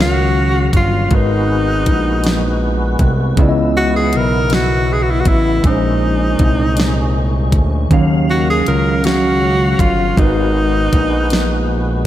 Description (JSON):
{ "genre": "slow six-eight R&B", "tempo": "53 BPM (dotted quarters)", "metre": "6/8", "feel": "straight", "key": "Eb minor", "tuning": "A4 = 440 Hz", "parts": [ { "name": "warm tenor saxophone", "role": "melody", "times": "0.0-12.1 s", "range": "Eb4 to Bb4", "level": "-18 LUFS", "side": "equal", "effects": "diffuse ambient delay" }, { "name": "tine electric piano", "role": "accompaniment", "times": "0.0-12.1 s", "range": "Bb2 to F5", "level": "-20 LUFS", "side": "equal", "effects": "medium stereo tremolo" }, { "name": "tonewheel organ", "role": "sustained chords", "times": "0.0-12.1 s", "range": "Bb2 to F5", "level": "-24 LUFS", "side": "equal", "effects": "overdrive, chorus vibrato, slow rotary speaker" }, { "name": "fat analog bass", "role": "bass", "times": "0.0-12.1 s", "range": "G1 to Eb2", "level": "-17 LUFS", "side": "equal", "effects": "none" }, { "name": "smooth R&B drum kit", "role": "drums", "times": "0.0-11.5 s", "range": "hi-hat, kick drum, snare drum", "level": "-16 LUFS", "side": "equal", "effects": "none" } ], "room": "light reverb", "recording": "none", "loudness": "-12 LUFS", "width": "side -13 dB against mid", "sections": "0.0-12.1 A section", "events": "none", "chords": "0.0 Ebm9; 1.1 Abm9; 3.4 Dbm9; 5.6 Bbm9; 7.9 Ebm9; 10.2 Abm9", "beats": "| 1.11 2.25 | 3.38 4.51 | 5.64 6.77 | 7.91 9.04 | 10.17 11.30" }